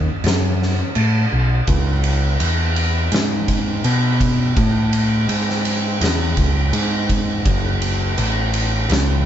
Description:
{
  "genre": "stoner and doom metal",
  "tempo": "83 BPM",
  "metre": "4/4",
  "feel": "straight",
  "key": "C# minor",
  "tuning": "A4 = 440 Hz",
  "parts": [
    { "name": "growling picked electric bass", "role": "bass", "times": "0.0-9.3 s", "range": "F#1 to B2", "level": "-18 LUFS", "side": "equal", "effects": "overdrive" },
    { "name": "oversized low-tuned drum kit", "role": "drums", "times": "0.2-9.1 s", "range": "crash cymbal, kick drum, ride cymbal, snare drum", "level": "-20 LUFS", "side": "equal", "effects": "none" }
  ],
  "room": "light reverb",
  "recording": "band playing live in one room, nothing above 7.8 kHz",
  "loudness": "-16 LUFS",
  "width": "side -10 dB against mid",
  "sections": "0.0-1.7 A section; 1.7-9.3 B section",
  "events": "none",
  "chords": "none"
}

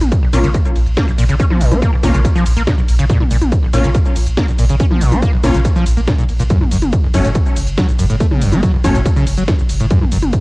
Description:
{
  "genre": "driving peak-time techno",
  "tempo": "141 BPM",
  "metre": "4/4",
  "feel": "straight",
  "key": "Bb harmonic minor",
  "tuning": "A4 = 440 Hz",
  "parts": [
    { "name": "warm sub bass", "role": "bass", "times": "0.0-10.3 s", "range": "Gb1 to Bb1", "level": "-16 LUFS", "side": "equal", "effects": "overdrive, sidechain pumping, low-pass filter" },
    { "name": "techno drum kit", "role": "drums", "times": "0.0-10.4 s", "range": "hi-hat, ride cymbal, shaker, snare drum, toms", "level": "-22 LUFS", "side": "equal", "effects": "cassette tape" },
    { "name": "electronic kick drum", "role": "drums", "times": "0.1-10.4 s", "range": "none", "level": "-15 LUFS", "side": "equal", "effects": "cassette tape" },
    { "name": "screaming distorted acid line", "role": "riff", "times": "0.2-10.2 s", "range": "Gb1 to Db4", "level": "-18 LUFS", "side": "equal", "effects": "distortion, analog chorus, vintage 12-bit sampler grit, sidechain pumping, cassette tape, tape echo" },
    { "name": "rave stab", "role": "stabs", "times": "0.3-9.0 s", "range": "Gb3 to F4", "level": "-21 LUFS", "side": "left 1 dB", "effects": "chorus, built-in reverb, sidechain pumping, cassette tape, tape echo" }
  ],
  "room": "light reverb",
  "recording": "home recording on cassette",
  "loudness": "-12 LUFS",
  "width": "side -23 dB against mid",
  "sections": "0.0-10.4 A section",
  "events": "none",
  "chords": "0.0 Bbm; 6.5 Gbm"
}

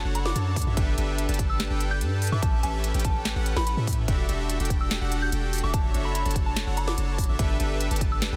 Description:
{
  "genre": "future bass",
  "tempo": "145 BPM",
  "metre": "4/4",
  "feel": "half-time",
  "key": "unclear",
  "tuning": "A4 = 438 Hz",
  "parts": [
    { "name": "soft synth bell", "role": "melody", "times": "0.0-8.2 s", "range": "A5 to G6", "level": "-36 LUFS", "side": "equal", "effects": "chorus, phaser, sidechain pumping, delay" },
    { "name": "big bright polysynth", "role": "riff", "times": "0.0-8.4 s", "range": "C#4 to A5", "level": "-34 LUFS", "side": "equal", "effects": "cassette tape, sidechain pumping" },
    { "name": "long sustained 808-style bass", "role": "bass", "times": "0.0-8.4 s", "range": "E1 to A2", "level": "-30 LUFS", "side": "equal", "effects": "sidechain pumping" },
    { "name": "trap drum kit", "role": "drums", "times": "0.1-8.3 s", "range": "hi-hat, snare drum", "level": "-34 LUFS", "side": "equal", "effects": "overdrive" },
    { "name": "electronic kick drum", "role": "drums", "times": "0.6-8.1 s", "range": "none", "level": "-28 LUFS", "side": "equal", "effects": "none" }
  ],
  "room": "little or no reverb",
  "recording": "dense, heavily limited modern master",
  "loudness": "-26 LUFS",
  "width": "mono",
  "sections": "0.0-8.4 A section",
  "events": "none",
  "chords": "0.0 Dmaj7/F#; 0.8 G69; 2.4 A9; 4.1 Em11; 5.7 Dmaj9/F#; 7.4 G69"
}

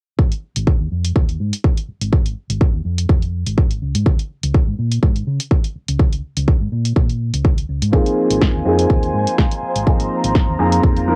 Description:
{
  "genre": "filtered disco house",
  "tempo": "124 BPM",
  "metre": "4/4",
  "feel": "swing 54% on 16ths",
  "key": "Ab major",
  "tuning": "A4 = 440 Hz",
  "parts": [
    { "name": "hollow-body short-scale fingered electric bass", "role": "bass", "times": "0.2-11.2 s", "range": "Ab1 to Db3", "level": "-23 LUFS", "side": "equal", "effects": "sidechain pumping, low-pass filter" },
    { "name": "electronic kick drum", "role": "drums", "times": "0.2-10.9 s", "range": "none", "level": "-17 LUFS", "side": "equal", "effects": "cassette tape" },
    { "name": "punchy analog drum machine", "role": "drums", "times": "0.3-11.1 s", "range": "hi-hat, snare drum", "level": "-27 LUFS", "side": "equal", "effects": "sidechain pumping on hats, cassette tape" },
    { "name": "warm baby grand piano", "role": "accompaniment", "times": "7.9-11.2 s", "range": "F3 to Bb4", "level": "-20 LUFS", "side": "equal", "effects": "phaser, vintage 12-bit sampler grit, sidechain pumping, low-pass filter, cassette tape" },
    { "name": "clear chamber violin section", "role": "sustained chords", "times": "7.9-11.2 s", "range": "F4 to Bb5", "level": "-26 LUFS", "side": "equal", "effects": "vintage 12-bit sampler grit, sidechain pumping, low-pass filter, cassette tape" }
  ],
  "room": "little or no reverb",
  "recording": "home recording on cassette",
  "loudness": "-18 LUFS",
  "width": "mono",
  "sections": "0.2-11.2 A section",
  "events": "filter sweep 0.2-11.2",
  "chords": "0.2 Ab5; 3.8 Db5; 7.9 Ab6"
}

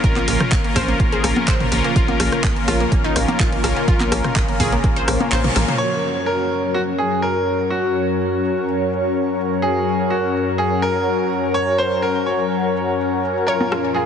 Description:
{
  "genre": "progressive house",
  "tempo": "125 BPM",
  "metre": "4/4",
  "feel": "straight",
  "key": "unclear",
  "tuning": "A4 = 440 Hz",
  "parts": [
    { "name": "airy breathy pad", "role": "sustained chords", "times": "0.0-14.1 s", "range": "Gb2 to F5", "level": "-24 LUFS", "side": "equal", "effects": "chorus, phaser, sidechain pumping" },
    { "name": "wide unison pluck", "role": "arpeggios", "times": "0.0-5.8, 13.5-14.1 s", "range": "Bb3 to Db5", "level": "-24 LUFS", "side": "equal", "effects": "sidechain pumping, ping-pong delay" },
    { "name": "soft supersaw", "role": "stabs", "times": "0.0-14.1 s", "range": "Db4 to Bb4", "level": "-22 LUFS", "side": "left 3 dB", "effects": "phaser, sidechain pumping, low-pass filter, ping-pong delay" },
    { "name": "tight sequencer bass", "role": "bass", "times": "0.0-5.7 s", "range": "Bb1", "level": "-24 LUFS", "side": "right 1 dB", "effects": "sidechain pumping" },
    { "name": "deep house drum kit", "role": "drums", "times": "0.0-14.1 s", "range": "cabasa, handclaps, hi-hat, rim click, toms", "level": "-26 LUFS", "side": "equal", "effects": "low-pass filter on hats, low-pass filter on snare, low-pass filter on toms, low-pass filter on perc" },
    { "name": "electronic kick drum", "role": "drums", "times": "0.0-4.9 s", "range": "none", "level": "-20 LUFS", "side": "right 1 dB", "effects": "none" },
    { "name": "punchy analog drum machine", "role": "percussion", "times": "0.2-5.7, 13.6-13.8 s", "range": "congas, rim click, toms", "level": "-26 LUFS", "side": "left 1 dB", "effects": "overdrive, sidechain pumping on perc, sidechain pumping on toms, sidechain pumping on snare" },
    { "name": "clear baby grand piano", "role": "melody", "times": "5.8-14.1 s", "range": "Gb4 to Db5", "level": "-22 LUFS", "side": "right 1 dB", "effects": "ping-pong delay" }
  ],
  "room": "moderate huge ambient reverb, RT60 4.1 s",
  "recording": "heavily compressed radio sound, nothing above 10.4 kHz",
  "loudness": "-16 LUFS",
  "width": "side -8 dB against mid",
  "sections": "0.0-5.8 A section; 5.8-14.1 B section",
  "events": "kick drops out 5.3-5.8; band accent 5.3; drum fill 5.4-5.8",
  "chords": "0.0 Bbm; 5.8 Gb; 13.5 Bbm"
}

